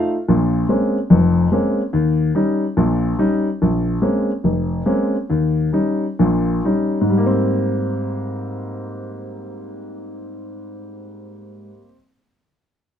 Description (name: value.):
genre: solo jazz.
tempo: 123-145 BPM.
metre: 4/4.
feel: swing 64% on 8ths.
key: Ab major.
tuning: A4 = 440 Hz.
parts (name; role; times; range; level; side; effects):
warm grand piano; solo; 0.0-11.9 s; F1 to F4; -17 LUFS; left 1 dB; none.
room: moderate studio reverb, RT60 0.8 s.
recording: dark, warm production.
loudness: -16 LUFS.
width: side -9 dB against mid.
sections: 0.3-7.1 A section; 7.1-11.0 B section.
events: slowing down 3.6-7.1.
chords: 0.3 Bbm9; 1.9 Eb7; 3.6 Bbm9; 5.3 Eb7; 7.1 Abmaj9.